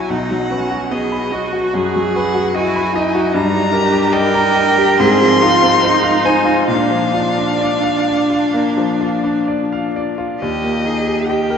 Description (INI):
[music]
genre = classical, slow romantic movement for piano quartet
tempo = 64-77 BPM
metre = 4/4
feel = rubato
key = B major, Eb major from 3.4 s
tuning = A4 = 440 Hz
[part]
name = warm violin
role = melody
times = 0.0-11.6 s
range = Eb5 to C6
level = -20 LUFS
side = left 3 dB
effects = none
[part]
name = rich cello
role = second line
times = 0.0-11.6 s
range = D4 to Bb4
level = -18 LUFS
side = right 3 dB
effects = none
[part]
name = bright grand piano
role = accompaniment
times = 0.0-11.6 s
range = B1 to C#6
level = -18 LUFS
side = left 1 dB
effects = none
[part]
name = rich viola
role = accompaniment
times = 0.0-11.6 s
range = B3 to G4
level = -22 LUFS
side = right 1 dB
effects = none
[sound]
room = wet cathedral reverb, RT60 5.6 s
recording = in a vast, echoing space, nothing above 8.0 kHz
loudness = -13 LUFS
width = side -7 dB against mid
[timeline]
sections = 0.0-10.4 A section; 10.4-11.6 B section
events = none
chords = 0.1 B; 3.4 Eb/G; 5.0 Fm/Ab; 6.7 Bb; 10.4 Eb